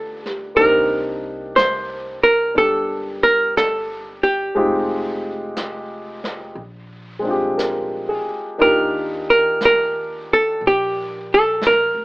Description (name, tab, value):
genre	jazz ballad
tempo	60 BPM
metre	4/4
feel	swing 67% on 8ths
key	unclear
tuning	A4 = 441 Hz
part	archtop guitar, miked and amplified	melody	0.0-12.0 s	G4 to C5	-16 LUFS	right 1 dB	none
part	clear upright piano	accompaniment	0.0-12.0 s	F3 to Bb4	-24 LUFS	left 1 dB	none
part	upright bass	bass	0.0-12.0 s	F1 to Eb2	-38 LUFS	equal	none
part	vintage brush drum kit	drums	0.3-12.0 s	brushed snare drum, hi-hat, snare drum	-32 LUFS	equal	none
room	light reverb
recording	AM radio sound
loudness	-16 LUFS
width	side -23 dB against mid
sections	0.0-12.0 A section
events	none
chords	0.0 G7b13; 0.6 Cm7; 4.6 Fm9; 6.6 Bb13; 8.6 Ebmaj9